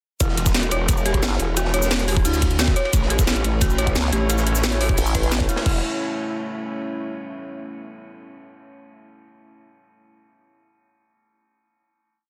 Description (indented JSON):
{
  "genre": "dark technical drum and bass",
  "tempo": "176 BPM",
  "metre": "4/4",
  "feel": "straight",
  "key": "E dorian",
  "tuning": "A4 = 440 Hz",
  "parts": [
    { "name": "dark detuned synth bell", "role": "arpeggios", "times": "0.2-5.8 s", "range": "E4 to C#5", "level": "-29 LUFS", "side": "equal", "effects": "chorus, sidechain pumping, delay" },
    { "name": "growl bass", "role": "bass", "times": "0.2-5.8 s", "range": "E1 to D2", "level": "-25 LUFS", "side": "equal", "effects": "chorus, tube saturation" },
    { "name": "crunchy breakbeat drum kit", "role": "drums", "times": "0.2-5.7 s", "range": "hi-hat, ride cymbal, snare drum", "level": "-34 LUFS", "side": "equal", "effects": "high-pass filter on cymbals, high-pass filter on hats, high-pass filter on snare, high-pass filter on room" },
    { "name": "drum and bass drum kit", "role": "drums", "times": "0.2-5.7 s", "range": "crash cymbal, hi-hat, shaker, snare drum", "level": "-27 LUFS", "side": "equal", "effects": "overdrive" },
    { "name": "electronic kick drum", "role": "drums", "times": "0.2-5.7 s", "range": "none", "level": "-24 LUFS", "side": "equal", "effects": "overdrive" },
    { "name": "formant-sweep wobble bass", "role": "bass", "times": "1.2-1.4, 4.0-5.5 s", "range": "G1 to C#2", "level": "-24 LUFS", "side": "equal", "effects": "chorus" },
    { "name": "deep dark ambient pad", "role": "sustained chords", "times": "3.4-5.8 s", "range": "A3 to C#5", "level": "-32 LUFS", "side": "equal", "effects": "chorus, built-in reverb, sidechain pumping" }
  ],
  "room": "light reverb, digital ambience",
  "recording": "dense, heavily limited modern master",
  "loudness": "-21 LUFS",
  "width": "mono",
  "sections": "0.2-5.7 drop; 5.7-7.0 final chord",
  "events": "drop 0.2-5.7",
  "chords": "0.2 N.C.; 2.9 A; 5.7 Em",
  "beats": "| 0.20 0.55 0.89 1.23 | 1.57 1.91 2.25 2.59 | 2.93 3.27 3.61 3.96 | 4.30 4.64 4.98 5.32 | 5.66"
}